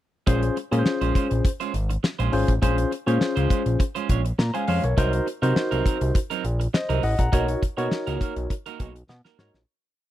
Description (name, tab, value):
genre	early-eighties boogie funk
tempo	102 BPM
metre	4/4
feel	straight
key	Bb minor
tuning	A4 = 440 Hz
part	barky tine electric piano	accompaniment	0.3-9.6 s	Db4 to Bb5	-25 LUFS	left 2 dB	overdrive
part	electric guitar at the edge of break-up	riff	0.3-9.6 s	Gb3 to Db5	-30 LUFS	right 9 dB	wide subtle chorus
part	fat analog bass	bass	0.3-9.7 s	Ab1 to C3	-24 LUFS	equal	none
part	damped 70s drum kit	drums	0.3-9.7 s	hi-hat, kick drum, snare drum	-24 LUFS	equal	none
room	small room ambience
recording	dry, close 1970s-style studio recording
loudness	-21 LUFS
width	side -13 dB against mid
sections	0.3-9.7 verse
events	fade-out 7.3-9.7; drum fill 9.1-9.7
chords	0.3 Bbm9; 5.0 Cm7b5; 7.3 Bmaj7